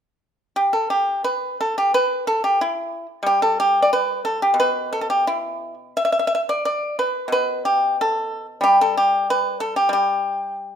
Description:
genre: chinese traditional, Chinese solo plucked strings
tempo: 86-94 BPM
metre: 2/4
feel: rubato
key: G gong mode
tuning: A4 = 445 Hz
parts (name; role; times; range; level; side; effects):
- pipa; solo; 0.6-10.8 s; B2 to E5; -18 LUFS; equal; none
room: light reverb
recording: minimal, uncompressed stereo recording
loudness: -18 LUFS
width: side -8 dB against mid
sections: 0.6-10.8 A section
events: none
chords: none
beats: | 0.55 1.24 | 1.93 2.59 | 3.24 3.89 | 4.55 5.23 | 5.92 6.62 | 7.30 7.97 | 8.63 9.27 | 9.91 10.58

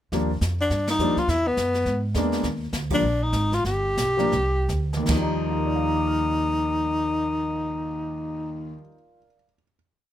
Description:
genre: jazz, small-group swing and bop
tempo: 144-207 BPM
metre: 4/4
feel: swing 61% on 8ths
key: Eb major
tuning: A4 = 440 Hz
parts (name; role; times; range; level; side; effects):
- clear concert grand piano; accompaniment; 0.1-9.8 s; Eb2 to F6; -27 LUFS; equal; none
- upright bass; bass; 0.1-8.8 s; G1 to G#2; -28 LUFS; right 1 dB; none
- jazz brush drum kit; drums; 0.1-5.4 s; brushed snare drum, hi-hat, kick drum, ride cymbal, snare drum; -31 LUFS; equal; none
- breathy tenor saxophone; melody; 0.6-8.8 s; B3 to G4; -24 LUFS; left 2 dB; none
room: little or no reverb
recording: close, detailed microphones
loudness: -22 LUFS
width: side -12 dB against mid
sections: 0.1-5.1 A section; 5.1-8.4 final chord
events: band accent 0.8, 2.9; slowing down 2.4-5.1; drum fill 4.7-5.1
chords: 0.1 Ebmaj7; 1.3 E7#11; 2.4 Ebmaj7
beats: | 0.12 0.41 0.70 0.99 | 1.28 1.57 1.86 2.15 | 2.44 2.73 3.03 3.33 | 3.65 3.98 4.33 4.70 | 5.09 5.51 5.92 6.34 | 6.75 7.17 7.58 8.00

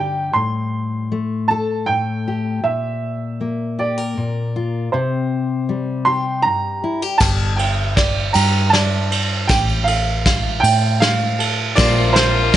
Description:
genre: indie folk with a building arrangement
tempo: 52 BPM (dotted quarters)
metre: 6/8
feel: straight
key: unclear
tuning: A4 = 439 Hz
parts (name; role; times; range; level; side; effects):
- clear upright piano; melody; 0.0-12.6 s; C5 to C6; -21 LUFS; right 3 dB; none
- fingerpicked steel-string acoustic guitar; accompaniment; 0.0-9.5 s; G2 to Bb4; -22 LUFS; left 3 dB; none
- tenor ukulele; arpeggios; 7.2-12.6 s; G4 to G5; -26 LUFS; right 8 dB; none
- hollow-body short-scale fingered electric bass; bass; 7.2-12.6 s; G1 to A2; -19 LUFS; equal; none
- vintage brush drum kit; drums; 7.2-12.6 s; crash cymbal, kick drum, ride cymbal, snare drum; -18 LUFS; equal; none
- tambourine; percussion; 7.2-12.6 s; none; -31 LUFS; left 6 dB; none
- warm fiddle; second line; 11.8-12.6 s; F4; -21 LUFS; left 5 dB; none
- picked acoustic archtop guitar; accompaniment; 11.8-12.6 s; Bb2 to C5; -22 LUFS; left 8 dB; none
- hand-pumped harmonium; sustained chords; 11.8-12.6 s; C3 to D4; -28 LUFS; right 1 dB; none
room: little or no reverb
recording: nothing above 10.5 kHz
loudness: -16 LUFS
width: side -12 dB against mid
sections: 0.0-7.2 A section; 7.2-12.6 B section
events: build-up 7.2-12.6; drum fill 7.2-12.6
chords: 0.3 Am7; 2.6 Bb; 4.9 C5; 7.2 Gsus4; 9.5 Fadd9/A; 11.8 Bbadd9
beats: | 0.34 1.49 | 2.63 3.78 | 4.92 6.07 | 7.21 8.36 | 9.50 10.64 | 11.79

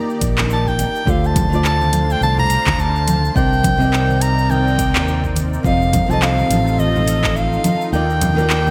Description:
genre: sunset chillout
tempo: 105 BPM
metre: 4/4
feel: swing 58% on 16ths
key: unclear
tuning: A4 = 440 Hz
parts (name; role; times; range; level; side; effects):
- breathy soprano saxophone; melody; 0.0-8.7 s; Eb5 to Bb5; -23 LUFS; equal; digital delay
- nylon-string guitar; accompaniment; 0.0-8.7 s; C3 to Eb5; -24 LUFS; equal; none
- lush unison pad; sustained chords; 0.0-8.7 s; C4 to F5; -30 LUFS; equal; chorus, phaser
- deep house drum kit; drums; 0.1-8.7 s; congas, handclaps, hi-hat, shaker; -24 LUFS; equal; overdrive, gated reverb
- fretless electric bass; bass; 0.2-8.7 s; F1 to Eb2; -21 LUFS; equal; tube saturation
- electronic kick drum; drums; 0.2-7.3 s; none; -24 LUFS; equal; none
- congas and bongos; percussion; 0.4-8.7 s; none; -30 LUFS; equal; none
room: moderate lush hall reverb, RT60 1.6 s, digital ambience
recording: bright 1980s-style digital production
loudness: -16 LUFS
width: mono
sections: 0.0-8.7 A section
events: kick drops out 7.9-8.7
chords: 0.0 Ebmaj9; 1.1 Dm7; 3.4 Cm9; 5.6 F9; 7.9 Ebmaj9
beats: 0.50 | 1.07 1.64 2.21 2.79 | 3.36 3.93 4.50 5.07 | 5.64 6.21 6.79 7.36 | 7.93 8.50

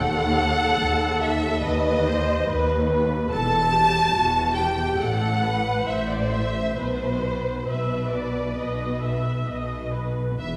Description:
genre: classical, slow romantic movement for string orchestra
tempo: 65-72 BPM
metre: 4/4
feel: rubato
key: E minor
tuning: A4 = 439 Hz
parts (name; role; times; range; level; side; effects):
- warm studio violin section; melody; 0.0-10.6 s; B4 to A5; -28 LUFS; equal; none
- warm symphonic violin section; second line; 0.0-10.6 s; B4 to A5; -32 LUFS; equal; none
- rich symphonic viola section; accompaniment; 0.0-10.4 s; F#4 to E5; -30 LUFS; equal; none
- clear symphonic double bass section; bass; 0.0-10.6 s; E1 to D#2; -31 LUFS; equal; none
- warm symphonic cello section; bass; 0.0-10.6 s; D#2 to B2; -30 LUFS; equal; none
room: wet scoring stage reverb, RT60 1.9 s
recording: heard from further back in the room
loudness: -23 LUFS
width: mono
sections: 0.0-10.6 A section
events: none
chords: 0.0 D#dim7; 3.3 Emadd11; 5.0 Am; 6.8 E5/B; 8.6 B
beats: 0.80 1.64 2.48 | 3.31 4.15 5.00 5.87 | 6.76 7.67 8.59 9.48 | 10.39

